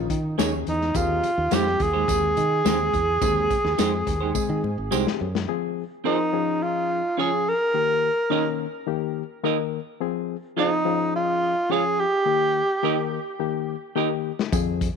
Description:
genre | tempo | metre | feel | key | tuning
uptempo 1960s-style soul | 106 BPM | 4/4 | straight | unclear | A4 = 440 Hz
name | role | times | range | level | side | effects
breathy tenor saxophone | melody | 0.0-13.1 s | Eb4 to Bb4 | -23 LUFS | right 2 dB | tape echo
barky reed electric piano | accompaniment | 0.0-14.9 s | Eb3 to Bb4 | -28 LUFS | left 14 dB | none
fingered electric bass | bass | 0.0-5.5, 14.5-14.9 s | Ab1 to Eb3 | -28 LUFS | right 1 dB | none
vintage drum kit | drums | 0.1-5.5, 14.4-14.9 s | hi-hat, kick drum, snare drum | -28 LUFS | left 4 dB | none
semi-hollow electric guitar | stabs | 0.4-14.1 s | Ab3 to F5 | -27 LUFS | right 15 dB | none
congas | percussion | 0.4-5.2, 14.5-14.9 s | none | -38 LUFS | right 12 dB | none
tambourine | percussion | 0.4-5.0, 14.5-14.7 s | none | -36 LUFS | right 19 dB | none
room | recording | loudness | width
small room ambience | 1960s-style stereo with parts hard left and right | -21 LUFS | side -6 dB against mid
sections
0.0-5.5 A section; 5.5-15.0 B section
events
drum fill 4.3-5.5, 13.4-14.5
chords
0.0 Eb7sus4; 1.0 Abmaj7/Eb; 5.5 Fm; 6.3 Db; 7.7 Eb; 10.0 Fm; 10.9 Db; 12.3 Eb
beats
0.39 | 0.95 1.52 2.09 2.65 | 3.22 3.78 4.35 4.92 | 5.48 6.05 6.62 7.18 | 7.75 8.31 8.88 9.45 | 10.01 10.58 11.14 11.71 | 12.27 12.84 13.40 13.96 | 14.53

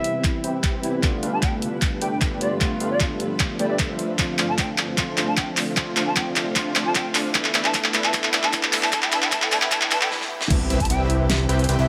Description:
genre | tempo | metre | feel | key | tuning
future bass | 152 BPM | 4/4 | half-time | C major | A4 = 440 Hz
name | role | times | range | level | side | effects
silver concert flute | melody | 0.0-11.9 s | D5 to A5 | -31 LUFS | equal | sidechain pumping, dub echo
bell-like tine electric piano | accompaniment | 0.0-10.5 s | C3 to B4 | -32 LUFS | equal | ensemble chorus, sidechain pumping, tape echo
shimmering ambient pad | sustained chords | 0.0-11.9 s | D2 to B4 | -40 LUFS | equal | none
supersaw stab | riff | 0.0-11.9 s | A3 to G5 | -30 LUFS | equal | sidechain pumping, low-pass filter
big-room dance drum kit | drums | 0.0-11.8 s | crash cymbal, handclaps, hi-hat, snare drum | -25 LUFS | equal | none
electronic kick drum | drums | 0.2-10.9 s | none | -27 LUFS | equal | overdrive
fat analog bass | bass | 10.5-11.9 s | C2 | -24 LUFS | equal | tube saturation, sidechain pumping
impact | sound effects | 10.5-11.9 s | none | -33 LUFS | equal | none
room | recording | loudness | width
moderate lush hall reverb, RT60 2.0 s | high-pass filter | -22 LUFS | mono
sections
0.0-10.5 A section; 10.5-11.9 B section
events
build-up 0.0-10.5; drum fill 0.0-10.1, 10.1-10.5; filter sweep on supersaw synth 0.0-10.5; filter sweep 0.0-10.5; break 10.1-10.5; drop 10.5-11.9; impact 10.5-11.9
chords
0.0 Cmaj7; 1.0 G9; 4.0 Dm7; 7.3 Em7; 10.5 Cmaj7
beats
0.24 0.64 | 1.03 1.43 1.82 2.21 | 2.61 3.00 3.40 3.79 | 4.19 4.58 4.98 5.37 | 5.77 6.16 6.56 6.95 | 7.35 7.74 8.13 8.53 | 8.93 9.32 9.71 10.11 | 10.50 10.90 11.29 11.69

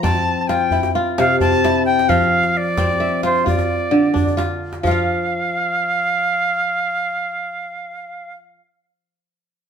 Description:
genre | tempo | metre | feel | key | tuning
west african traditional, West African string and xylophone music | 87 BPM (dotted quarters) | 12/8 | straight | F major | A4 = 439 Hz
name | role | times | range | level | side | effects
bright reedy silver concert flute | melody | 0.0-8.3 s | C5 to A5 | -19 LUFS | equal | none
kora | arpeggios | 0.0-8.6 s | C3 to F5 | -19 LUFS | left 1 dB | none
djembe | percussion | 0.0-5.1 s | none | -23 LUFS | right 1 dB | none
room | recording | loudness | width
wet studio reverb, RT60 0.9 s | band playing live in one room | -16 LUFS | side -7 dB against mid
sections
0.0-4.8 A section; 4.8-7.6 B section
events
none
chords
0.0 F5; 0.7 C; 2.1 F5; 3.5 Dm; 4.8 N.C.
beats
0.03 0.71 1.40 | 2.09 2.77 3.46 4.14 | 4.83 5.52 6.20 6.89

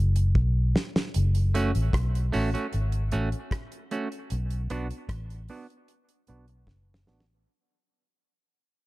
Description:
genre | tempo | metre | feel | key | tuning
dub reggae | 76 BPM | 4/4 | straight | unclear | A4 = 440 Hz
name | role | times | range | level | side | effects
vintage muted fingered electric bass | bass | 0.0-7.4 s | F#1 to B1 | -24 LUFS | equal | none
damped 70s drum kit | drums | 0.2-7.4 s | hi-hat, kick drum, rim click, snare drum | -29 LUFS | equal | none
semi-hollow electric guitar | accompaniment | 1.5-7.2 s | A3 to F#4 | -32 LUFS | right 3 dB | low-pass filter, dub echo
room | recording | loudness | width
studio reverb | dark, warm production | -24 LUFS | side -20 dB against mid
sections
0.0-1.1 A section; 1.1-7.5 B section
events
break 0.0-1.1; drum fill 0.4-1.1, 6.7-7.5; fade-out 1.1-7.5; filter sweep on clean electric guitar 1.1-7.5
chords
0.0 B5; 1.1 F#m; 4.3 Bm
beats
0.35 | 1.14 1.93 2.72 3.51 | 4.30 5.09 5.88 6.67

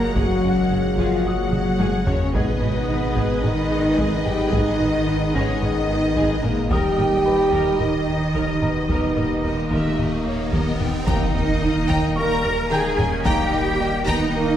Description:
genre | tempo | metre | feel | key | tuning
cinematic, hybrid orchestral and electronic film score | 110 BPM | 4/4 | straight | unclear | A4 = 440 Hz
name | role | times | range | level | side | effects
warm symphonic violin section | melody | 0.0-14.6 s | C#5 to A#5 | -32 LUFS | left 3 dB | none
warm studio violin section | second line | 0.0-14.3 s | A#4 to A#5 | -31 LUFS | left 2 dB | none
clear symphonic viola section | accompaniment | 0.0-14.6 s | G3 to D#5 | -31 LUFS | equal | none
clear trombone section | sustained chords | 0.0-14.5 s | A#2 to D#4 | -30 LUFS | right 3 dB | none
hollow soft pad | sustained chords | 0.0-14.6 s | D#3 to A#5 | -29 LUFS | equal | chorus
mellow French horn section | sustained chords | 0.0-14.6 s | D#3 to A#4 | -25 LUFS | left 1 dB | none
soft round pluck | arpeggios | 0.0-14.2 s | D#3 to G#4 | -32 LUFS | left 4 dB | none
dark symphonic cello section | bass | 0.0-14.6 s | A#2 to A#4 | -26 LUFS | right 1 dB | none
sub bass with octave | bass | 0.0-14.6 s | D#1 to G#1 | -30 LUFS | equal | none
rich studio double bass section | bass | 0.2-14.2 s | F#1 to D#2 | -29 LUFS | right 2 dB | none
solo taiko drums | drums | 0.2-14.6 s | none | -27 LUFS | equal | none
felt-muted upright piano | texture | 1.3-14.6 s | A#4 to A#6 | -36 LUFS | left 1 dB | tape echo
riser and impact | sound effects | 8.8-13.3 s | none | -30 LUFS | equal | none
room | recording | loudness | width
wet scoring stage reverb, RT60 1.6 s | heard from further back in the room | -18 LUFS | side -10 dB against mid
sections
0.0-11.1 A section; 11.1-14.6 B section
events
drum fill 1.5-2.3; riser 8.8-11.1; impact 11.1-13.3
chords
0.0 F#add9; 2.3 G#m; 6.7 D#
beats
| 0.17 0.71 1.26 1.80 | 2.35 2.89 3.44 3.98 | 4.53 5.08 5.62 6.17 | 6.71 7.26 7.80 8.35 | 8.89 9.44 9.98 10.53 | 11.07 11.62 12.16 12.71 | 13.26 13.80 14.35

